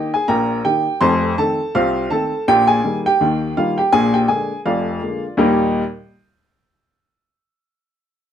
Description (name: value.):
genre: ragtime piano.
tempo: 82 BPM.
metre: 2/4.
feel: swing 59% on 16ths.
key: Eb major.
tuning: A4 = 440 Hz.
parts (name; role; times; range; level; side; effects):
warm upright piano; solo; 0.0-5.8 s; F1 to C6; -15 LUFS; equal; none.
room: moderate small room reverb, RT60 0.5 s.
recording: none.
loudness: -15 LUFS.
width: side -9 dB against mid.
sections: 0.0-5.4 A section; 5.4-6.9 B section.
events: none.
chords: 0.0 Eb; 1.0 F7; 2.5 Eb/Bb; 3.9 Bb7; 5.4 Eb.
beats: 0.29 | 1.02 1.75 | 2.48 3.21 | 3.94 4.67 | 5.41.